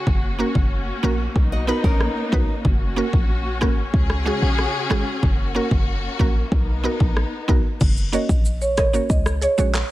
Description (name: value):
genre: dancehall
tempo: 93 BPM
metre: 4/4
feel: straight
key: F# major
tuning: A4 = 440 Hz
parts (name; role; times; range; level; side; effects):
- warm studio string section; sustained chords; 0.0-7.8 s; C#3 to G#4; -27 LUFS; left 2 dB; sidechain pumping
- short 808-style bass; bass; 0.1-9.8 s; F#1 to C#2; -22 LUFS; equal; none
- pop drum kit; drums; 0.1-9.9 s; crash cymbal, handclaps, hi-hat, kick drum, rim click, shaker; -21 LUFS; equal; vintage 12-bit sampler grit
- mallet-like synth pluck; accompaniment; 0.4-9.7 s; G#3 to D#5; -25 LUFS; right 2 dB; chorus, sidechain pumping
- nylon-string guitar; arpeggios; 1.5-2.6 s; C#4 to D#5; -28 LUFS; equal; digital delay
- marimba with medium hard mallets; melody; 8.1-9.6 s; C#5 to D#5; -23 LUFS; right 3 dB; none
room: digital ambience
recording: none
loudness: -18 LUFS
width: side -16 dB against mid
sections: 0.0-7.8 A section; 7.8-9.9 B section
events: none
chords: 0.1 F#; 1.4 Bmaj7; 2.6 F#; 3.9 C#sus4; 5.2 F#; 6.5 Bmaj7; 7.8 F#; 9.1 C#sus4